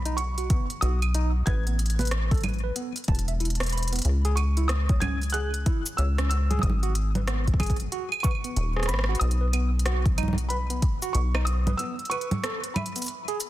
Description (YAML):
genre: IDM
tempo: 93 BPM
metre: 4/4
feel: swing 62% on 16ths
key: unclear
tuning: A4 = 440 Hz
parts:
  - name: felt-muted upright piano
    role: melody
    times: 0.0-13.5 s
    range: B5 to G#6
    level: -34 LUFS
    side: right 1 dB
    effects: ping-pong delay
  - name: deep acid bass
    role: bass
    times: 0.0-11.8 s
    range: D#1 to C#2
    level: -25 LUFS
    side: equal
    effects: none
  - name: tine electric piano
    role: arpeggios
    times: 0.1-13.4 s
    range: B3 to B5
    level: -34 LUFS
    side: right 2 dB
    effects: medium stereo tremolo, ping-pong delay
  - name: organic electronic drum kit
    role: drums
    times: 0.1-13.5 s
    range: cabasa, claves, congas, hi-hat, rim click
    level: -31 LUFS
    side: right 1 dB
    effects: overdrive
  - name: electronic kick drum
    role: drums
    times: 0.5-11.0 s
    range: none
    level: -25 LUFS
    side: equal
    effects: overdrive
room: little or no reverb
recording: dense, heavily limited modern master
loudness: -23 LUFS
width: side -15 dB against mid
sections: 0.0-13.5 A section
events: break 11.8-13.5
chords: 0.0 Badd9; 1.5 Asus2; 4.0 C#5; 6.6 G#m7; 9.2 B; 11.8 Asus2